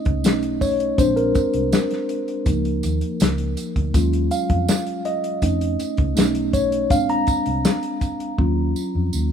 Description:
lush 1970s-style soul; 81 BPM; 4/4; straight; Eb dorian; A4 = 440 Hz
mellow tine electric piano; accompaniment; 0.0-9.3 s; F3 to Bb5; -21 LUFS; equal; medium stereo tremolo
vintage muted fingered electric bass; bass; 0.1-9.3 s; Bb1 to F2; -24 LUFS; equal
warm soul drum kit; drums; 0.1-8.6 s; hi-hat, kick drum, snare drum; -21 LUFS; left 1 dB
tambourine; percussion; 0.2-9.3 s; -35 LUFS; right 9 dB
studio reverb; rough home demo mix; -18 LUFS; side -8 dB against mid
0.0-9.3 A section
tine electric piano solo 0.0-9.3; drum fill 8.4-9.3
0.2 B9; 1.0 Bb7; 2.5 Db69; 3.9 Ebm11; 5.4 Faug7; 6.2 B9; 6.9 Bb7; 8.4 Ebm9

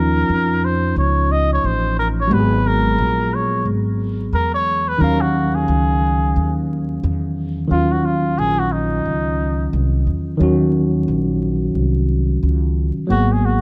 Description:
hip hop, jazz-hop; 89 BPM; 4/4; swing 61% on 16ths; Eb minor; A4 = 440 Hz
trumpet with cup mute; melody; 0.0-13.6 s; Eb4 to Eb5; -23 LUFS; equal
tine electric piano; accompaniment; 0.0-13.6 s; Eb3 to F5; -22 LUFS; equal; overdrive
upright bass; bass; 0.0-13.6 s; Ab1 to F2; -22 LUFS; equal
light reverb; dark, warm production, vinyl crackle; -18 LUFS; mono
0.0-7.7 A section; 7.7-13.6 B section
muted trumpet solo 0.0-7.7
0.0 Eb7sus2; 2.3 Abm9; 5.0 Ebm9; 13.1 Abm9

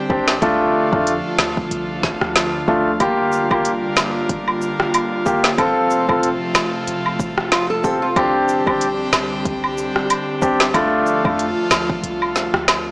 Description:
dancehall; 93 BPM; 4/4; swing 56% on 16ths; D minor; A4 = 440 Hz
airy breathy pad; sustained chords; 0.0-12.9 s; C3 to G4; -23 LUFS; equal; chorus, sidechain pumping
warm grand piano; accompaniment; 0.1-11.4 s; A3 to A4; -17 LUFS; equal
clean 808-style bass; bass; 0.1-12.9 s; E1 to F2; -34 LUFS; equal
afro-pop drum kit; drums; 0.1-12.8 s; hi-hat, kick drum, rim click, snare drum; -20 LUFS; equal
woodblock and cabasa; percussion; 3.0-12.9 s; -22 LUFS; right 1 dB
nylon-string guitar; arpeggios; 7.5-8.3 s; F4 to A4; -22 LUFS; right 1 dB
light reverb, digital ambience; small speaker sound; -16 LUFS; side -26 dB against mid
0.0-12.9 A section
kick muted 12.0-12.9
0.4 Dm; 3.0 Gm7; 5.6 F; 8.2 Csus2; 10.7 Dm

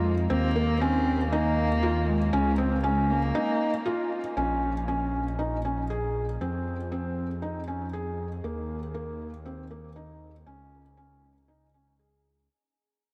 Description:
piano and strings electronica; 118 BPM; 4/4; straight; Bb minor; A4 = 440 Hz
dark cello; melody; 0.0-4.1 s; Ab3 to C4; -32 LUFS; equal; delay
felt-muted upright piano; riff; 0.0-12.3 s; Bb3 to Ab4; -32 LUFS; equal; delay
dark detuned saw bass; bass; 0.0-12.5 s; Bb1 to F2; -33 LUFS; equal
moderate huge ambient reverb, RT60 7.9 s; dreamy mix soaked in reverb; -28 LUFS; mono
0.0-4.4 A section; 4.4-12.5 B section
drop 0.0-4.4; break 3.3-4.4; fade-out 4.4-12.5
0.3 Eb5; 2.3 Db5; 3.3 Fsus4; 4.4 Bbm; 6.4 Fm; 8.4 Eb5; 10.5 Db5

